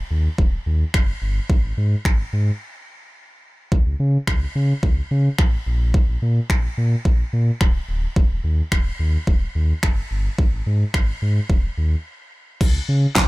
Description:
dance-pop; 108 BPM; 4/4; straight; A4 = 440 Hz
sub bass with octave; bass; 0.1-13.3 s; Db1 to C#3; -20 LUFS; equal; sidechain pumping
pop drum kit; drums; 0.4-13.3 s; crash cymbal, finger snaps, handclaps, kick drum, snare drum; -20 LUFS; equal; overdrive
little or no reverb; -18 LUFS; side -21 dB against mid
0.0-12.6 A section
break 2.6-3.7, 12.1-12.6

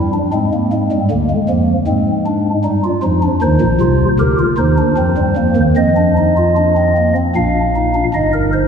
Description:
classical, baroque-style 3-part fugue for pipe organ; 77 BPM; 3/4; straight; A4 = 439 Hz
chamber organ, stopped flute; solo; 0.0-8.7 s; G1 to F5; -12 LUFS; equal
wet church reverb, RT60 3.0 s; recorded in a church or concert hall; -12 LUFS; side -7 dB against mid
0.0-8.1 A section
0.3 Abmaj9; 1.1 Bb7/D; 2.7 Eb/G; 3.4 Cm; 5.0 F5; 5.8 Bbsus4/F (rootless); 7.4 Bb; 8.1 Eb/G

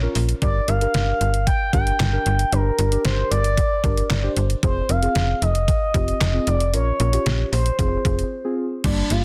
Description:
synth-pop; 114 BPM; 4/4; straight; F dorian; A4 = 440 Hz
expressive synth lead; melody; 0.0-9.2 s; D4 to G5; -27 LUFS; equal; chorus
muted felt-like synth keys; accompaniment; 0.0-9.2 s; G3 to C5; -30 LUFS; equal; chorus, phaser
slap-like FM bass; bass; 0.0-9.2 s; F1 to Bb1; -23 LUFS; equal
detuned 8-bit digital drum machine; drums; 0.2-9.2 s; crash cymbal, handclaps, hi-hat, kick drum, snare drum; -26 LUFS; equal
light reverb; dense, heavily limited modern master; -21 LUFS; mono
0.0-8.8 A section
break 8.3-8.8
0.4 Gm; 4.6 Fm; 6.7 Bbm; 7.8 Fm

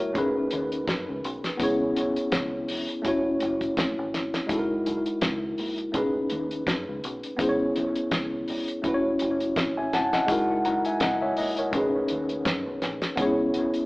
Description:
lovers rock reggae; 83 BPM; 4/4; swing 56% on 16ths; A4 = 440 Hz
tine electric piano; accompaniment; 0.0-13.9 s; G#3 to A#5; -25 LUFS; equal; overdrive, fast stereo tremolo, dub echo
deep dub fingered electric bass; bass; 0.0-13.7 s; E1 to F#2; -37 LUFS; equal
damped 70s drum kit; drums; 0.2-13.9 s; hi-hat, kick drum, snare drum; -30 LUFS; equal
moderate large studio reverb, RT60 1.3 s; band playing live in one room, AM radio sound; -24 LUFS; side -22 dB against mid
0.0-13.9 A section
0.2 B13; 1.6 C#m7; 3.0 F#m7; 4.5 F#13; 5.9 B13; 7.4 C#m7; 8.8 F#m7; 10.3 F#13; 11.7 B13; 13.2 C#m7

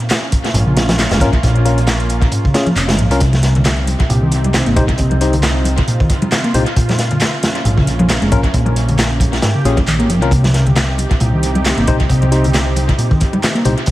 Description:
breakbeat, breaks; 135 BPM; 4/4; swing 55% on 16ths; C phrygian; A4 = 440 Hz
lush unison pad; sustained chords; 0.0-13.9 s; C3 to G4; -23 LUFS; right 1 dB; chorus, sidechain pumping
hollow-body short-scale picked electric bass; riff; 0.0-13.9 s; Ab2 to Bb3; -17 LUFS; equal; overdrive, tape echo
house drum kit; drums; 0.0-13.9 s; handclaps, hi-hat; -24 LUFS; equal; tape echo
crunchy breakbeat drum kit; drums; 0.1-13.9 s; hi-hat, kick drum, snare drum; -17 LUFS; equal; tape echo
picked electric bass; bass; 0.5-13.7 s; F1 to C2; -17 LUFS; equal; tube saturation
tine electric piano; stabs; 1.2-13.7 s; Db4 to C5; -22 LUFS; left 3 dB; medium stereo tremolo, vintage 12-bit sampler grit, tape echo
congas; percussion; 3.3-13.4 s; -22 LUFS; left 1 dB
light reverb, studio reverb; echo-heavy mix, vinyl crackle; -12 LUFS; side -16 dB against mid
0.0-13.9 A section
0.0 Bbm; 3.2 Cm; 6.8 Bbm; 10.3 Cm

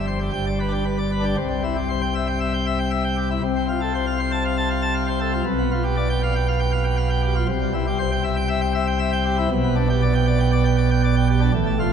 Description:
classical, organ toccata; 118 BPM; 4/4; straight; C major; A4 = 440 Hz
pipe organ, plenum; solo; 0.0-11.9 s; G1 to A5; -19 LUFS; equal
wet church reverb, RT60 3.7 s; minimal, uncompressed stereo recording; -19 LUFS; side -7 dB against mid
0.0-1.4 A section; 1.4-11.9 B section
0.3 G; 1.4 C; 3.4 F/C; 5.5 G7/B; 7.5 C; 9.5 G/B

